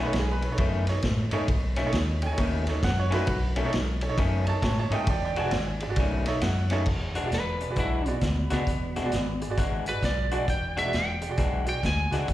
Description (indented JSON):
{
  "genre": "electric blues shuffle",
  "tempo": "133 BPM",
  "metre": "4/4",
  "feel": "swing 64% on 8ths",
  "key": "E mixolydian",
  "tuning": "A4 = 442 Hz",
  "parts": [
    { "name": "bright upright piano", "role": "accompaniment", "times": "0.0-12.2 s", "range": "D#4 to A5", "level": "-32 LUFS", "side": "right 4 dB", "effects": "plate reverb, slapback echo" },
    { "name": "electric guitar through a small old amp", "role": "riff", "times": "0.0-12.3 s", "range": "B2 to F#4", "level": "-33 LUFS", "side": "left 4 dB", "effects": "slapback echo" },
    { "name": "vintage muted fingered electric bass", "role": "bass", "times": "0.1-12.3 s", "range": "E1 to A2", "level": "-28 LUFS", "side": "equal", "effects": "none" },
    { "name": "vintage drum kit", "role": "drums", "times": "0.1-12.3 s", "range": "crash cymbal, hi-hat, kick drum, ride cymbal, snare drum", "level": "-30 LUFS", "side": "equal", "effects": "none" },
    { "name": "lightly driven lead guitar", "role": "melody", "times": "7.3-12.3 s", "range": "B3 to G#5", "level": "-30 LUFS", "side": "equal", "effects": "plate reverb, slapback echo, analog delay" }
  ],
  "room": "light reverb",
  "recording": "live gig heard through the venue's PA, recital hall reverb",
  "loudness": "-24 LUFS",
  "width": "side -14 dB against mid",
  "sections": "0.0-6.9 A section; 6.9-12.3 B section",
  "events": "upright piano fill 6.0-6.9",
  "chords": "0.0 B9; 5.1 E9; 6.0 B9; 6.9 E9"
}